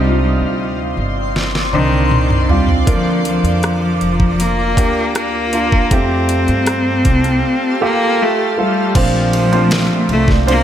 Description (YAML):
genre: pop ballad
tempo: 79 BPM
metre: 4/4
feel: straight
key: Bb major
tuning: A4 = 439 Hz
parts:
  - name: bright cello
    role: melody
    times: 0.0-10.6 s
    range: Eb3 to C4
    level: -17 LUFS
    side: left 2 dB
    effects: none
  - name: warm concert grand piano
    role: accompaniment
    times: 0.0-10.6 s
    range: Bb2 to C5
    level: -20 LUFS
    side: right 3 dB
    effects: none
  - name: shimmering ambient pad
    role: sustained chords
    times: 0.0-10.6 s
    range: C4 to C6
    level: -22 LUFS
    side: equal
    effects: chorus, built-in reverb, phaser
  - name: upright bass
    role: bass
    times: 0.0-10.6 s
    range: F1 to G2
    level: -19 LUFS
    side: equal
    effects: none
  - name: smooth R&B drum kit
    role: drums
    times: 1.4-10.6 s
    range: crash cymbal, hi-hat, kick drum, ride cymbal, rim click, snare drum, toms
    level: -18 LUFS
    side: equal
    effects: none
  - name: clear symphonic cello section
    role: second line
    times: 8.9-10.6 s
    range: Bb2 to A3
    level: -21 LUFS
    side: right 2 dB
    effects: none
room: light reverb, studio reverb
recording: none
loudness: -12 LUFS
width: side -10 dB against mid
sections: 0.0-8.9 A section; 8.9-10.6 B section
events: drum fill 1.4-2.9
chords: 0.0 Cmadd9; 2.9 Bb; 5.9 Fadd9; 8.9 Bbadd9